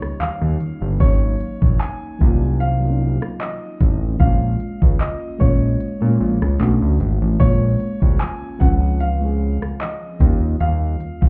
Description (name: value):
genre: contemporary R&B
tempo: 75 BPM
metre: 4/4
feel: swing 54% on 16ths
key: Bb minor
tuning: A4 = 440 Hz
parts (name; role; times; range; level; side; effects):
- warm grand piano; melody; 0.0-11.3 s; Db5 to Ab5; -31 LUFS; equal; delay
- mellow FM electric piano; accompaniment; 0.0-11.3 s; F3 to Ab4; -27 LUFS; equal; chorus, phaser
- smooth R&B drum kit; drums; 0.0-11.3 s; handclaps, hi-hat, kick drum, rim click; -19 LUFS; equal; none
- fat analog bass; bass; 0.2-11.3 s; G1 to Bb2; -20 LUFS; equal; none
room: digital ambience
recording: heard muffled through a wall, club reverb, EQ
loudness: -19 LUFS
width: mono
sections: 0.0-11.3 A section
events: none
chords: 0.0 Eb9; 1.0 Ab7sus4; 4.2 Bbm7; 6.6 Bm7; 7.4 Bbm7; 10.2 Eb9